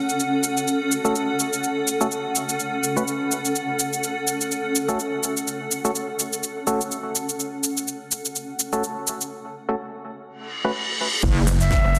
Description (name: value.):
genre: bass house.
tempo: 125 BPM.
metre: 4/4.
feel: swing 56% on 16ths.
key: F# minor.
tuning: A4 = 440 Hz.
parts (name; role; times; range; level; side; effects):
granular cloud pad; texture; 0.0-9.3 s; C#4 to F#5; -28 LUFS; equal; built-in reverb, sidechain pumping.
house drum kit; drums; 0.1-12.0 s; cabasa, crash cymbal, hi-hat, rim click, snare drum; -28 LUFS; equal; overdrive.
percussive organ stab; stabs; 1.0-10.7 s; A3 to B4; -30 LUFS; equal; chorus, cassette tape, sidechain pumping, digital delay.
reverse cymbal and downlifter; sound effects; 10.4-12.0 s; none; -28 LUFS; equal; none.
wobble bass; bass; 11.2-11.5 s; F#1; -22 LUFS; equal; chorus, tube saturation, sidechain pumping.
electronic kick drum; drums; 11.2-11.8 s; none; -24 LUFS; equal; overdrive.
jazz brush drum kit; drums; 11.2-12.0 s; hi-hat, snare drum; -40 LUFS; equal; none.
pulsing pluck wobble bass; bass; 11.5-12.0 s; F#1; -22 LUFS; equal; chorus, sidechain pumping.
breathy bright jazz flute; melody; 11.6-12.0 s; E5; -26 LUFS; equal; none.
room: wet lush hall reverb, RT60 2.2 s.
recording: dense, heavily limited modern master.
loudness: -24 LUFS.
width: mono.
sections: 0.0-11.2 A section.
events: reverse cymbal 10.4-11.2.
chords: 0.0 F#m; 11.2 N.C..